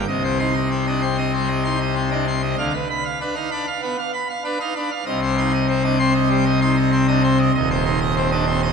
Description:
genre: classical, organ toccata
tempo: 97 BPM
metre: 4/4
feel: straight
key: C minor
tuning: A4 = 443 Hz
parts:
  - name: pipe organ, full organ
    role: solo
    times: 0.0-8.7 s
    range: Eb1 to C6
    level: -18 LUFS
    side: equal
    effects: none
room: wet church reverb, RT60 3.3 s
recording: nothing above 10.6 kHz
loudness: -18 LUFS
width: side -5 dB against mid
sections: 0.1-8.7 A section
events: none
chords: 0.1 Cm; 2.6 Dm6; 5.1 Cm; 7.5 Cm/Eb

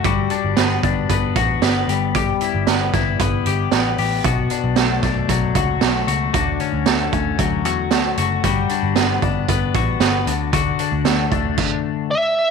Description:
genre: jangly indie pop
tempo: 114 BPM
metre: 4/4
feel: straight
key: D major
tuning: A4 = 440 Hz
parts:
  - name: twelve-string electric guitar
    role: arpeggios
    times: 0.0-12.1 s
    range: B2 to G4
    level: -20 LUFS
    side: left 12 dB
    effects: tape echo
  - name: vintage muted picked electric bass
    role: bass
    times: 0.0-11.5 s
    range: F#1 to E2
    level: -23 LUFS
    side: equal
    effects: none
  - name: raw garage drum kit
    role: drums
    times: 0.0-11.7 s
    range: crash cymbal, hi-hat, kick drum, snare drum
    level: -20 LUFS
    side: right 7 dB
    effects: none
  - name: bluesy overdriven lead guitar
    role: melody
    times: 12.1-12.5 s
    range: E5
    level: -16 LUFS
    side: right 1 dB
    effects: distortion
room: light reverb, studio reverb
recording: 1960s-style stereo with parts hard left and right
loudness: -16 LUFS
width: side -5 dB against mid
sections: 0.0-12.5 A section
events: none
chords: 0.0 Gmaj7; 1.9 Em/G; 4.2 Bm7; 6.3 Dmaj7; 8.4 Gmaj7; 10.3 D

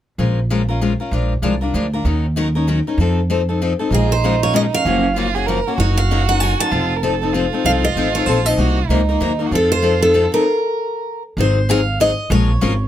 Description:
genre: acoustic string swing (jazz manouche)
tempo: 193 BPM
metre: 3/4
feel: swing 60% on 8ths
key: Bb minor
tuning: A4 = 439 Hz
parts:
  - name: picked steel-string acoustic guitar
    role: accompaniment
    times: 0.2-12.7 s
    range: C3 to Bb4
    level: -20 LUFS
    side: left 5 dB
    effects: none
  - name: upright bass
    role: bass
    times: 0.2-12.9 s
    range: F1 to F2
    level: -18 LUFS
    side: right 1 dB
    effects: none
  - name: picked steel-string acoustic guitar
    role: melody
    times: 3.9-12.9 s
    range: Ab4 to A5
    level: -18 LUFS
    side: right 1 dB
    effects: none
  - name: warm violin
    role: second line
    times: 3.9-10.4 s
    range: Db4 to Bb4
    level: -23 LUFS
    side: right 8 dB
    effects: none
room: little or no reverb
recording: close, detailed microphones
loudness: -15 LUFS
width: side -11 dB against mid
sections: 0.2-3.9 A section; 3.9-11.4 B section; 11.4-12.9 C section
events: stop 10.4-11.4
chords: 0.2 Bbm7; 1.1 Bb7; 2.1 Ebm7; 3.0 F7; 3.9 Bbm7; 4.8 Gbmaj7; 5.8 Ebm7/Gb; 6.7 F7; 8.6 Cm7b5; 9.5 F7; 10.4 N.C.; 11.4 Ab7; 12.3 Bbm7

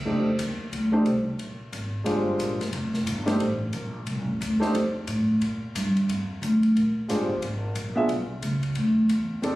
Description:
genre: jazz, big band swing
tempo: 179 BPM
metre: 4/4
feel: swing 62% on 8ths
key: unclear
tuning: A4 = 440 Hz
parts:
  - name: upright bass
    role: bass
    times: 0.0-9.6 s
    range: F1 to Bb2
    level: -26 LUFS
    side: equal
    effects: none
  - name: warm grand piano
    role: accompaniment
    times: 0.1-4.7, 7.1-9.6 s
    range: Ab3 to E5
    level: -24 LUFS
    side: equal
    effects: none
  - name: swinging big-band drum kit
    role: drums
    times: 0.1-9.5 s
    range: hi-hat, kick drum, ride cymbal, snare drum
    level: -36 LUFS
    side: left 2 dB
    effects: none
room: light reverb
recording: recorded on a phone in the room, club reverb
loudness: -23 LUFS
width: side -17 dB against mid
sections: 0.1-9.6 A section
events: none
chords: 0.1 F13; 1.4 Bb13; 2.7 F69; 5.4 Bb13; 8.1 Bmadd9

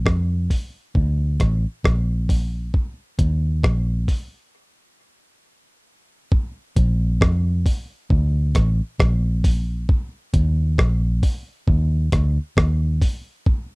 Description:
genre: dub reggae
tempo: 67 BPM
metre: 4/4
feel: swing 57% on 16ths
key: Bb major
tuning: A4 = 440 Hz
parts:
  - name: vintage muted fingered electric bass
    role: bass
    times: 0.0-13.0 s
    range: A1 to F2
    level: -19 LUFS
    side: equal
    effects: none
  - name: breakbeat sampler-style drum kit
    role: drums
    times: 0.1-13.7 s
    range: hi-hat, kick drum, rim click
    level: -19 LUFS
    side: equal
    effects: none
room: little or no reverb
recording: dry, close 1970s-style studio recording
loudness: -18 LUFS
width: side -37 dB against mid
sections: 0.0-6.3 A section; 6.3-13.8 B section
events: break 4.5-6.3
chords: none

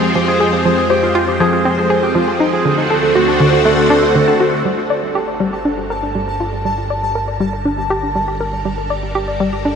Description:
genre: ambient, sequencer-driven space music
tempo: 120 BPM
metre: 4/4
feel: straight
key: G minor from 4.7 s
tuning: A4 = 440 Hz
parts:
  - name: phased string machine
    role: sustained chords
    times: 0.0-9.8 s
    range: D3 to G5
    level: -19 LUFS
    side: equal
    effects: ensemble chorus, phaser
  - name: concert harp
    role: arpeggios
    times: 0.0-6.6 s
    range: D4 to C5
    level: -18 LUFS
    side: right 2 dB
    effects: auto-pan, tape echo
  - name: hollow square pluck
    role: riff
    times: 0.0-9.8 s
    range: D3 to D5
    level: -18 LUFS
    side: equal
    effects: chorus, tape echo
  - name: analog drone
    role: bass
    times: 0.0-9.8 s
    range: G1 to F2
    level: -26 LUFS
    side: equal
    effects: chorus
  - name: pulsing gated texture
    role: texture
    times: 0.0-9.8 s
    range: C4 to A5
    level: -24 LUFS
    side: left 1 dB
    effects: chorus, built-in reverb
room: wet huge ambient reverb, RT60 7.7 s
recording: none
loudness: -13 LUFS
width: side -6 dB against mid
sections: 0.0-4.7 A section; 4.7-9.8 B section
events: none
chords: 0.0 Fmadd9; 2.7 D7; 4.7 Gmadd9

